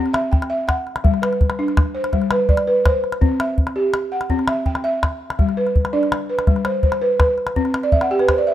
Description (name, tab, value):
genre	west african traditional, West African string and xylophone music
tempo	110 BPM (dotted quarters)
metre	12/8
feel	straight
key	G major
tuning	A4 = 442 Hz
part	balafon	arpeggios	0.0-8.5 s	G3 to G5	-18 LUFS	equal	none
part	calabash	percussion	0.1-8.4 s	none	-18 LUFS	equal	none
room	light reverb, studio ambience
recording	rough home demo mix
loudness	-16 LUFS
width	side -12 dB against mid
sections	0.0-5.4 A section; 5.4-8.5 B section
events	balafon fill 7.8-8.5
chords	0.0 C; 1.0 G; 3.2 C; 5.4 G; 7.6 C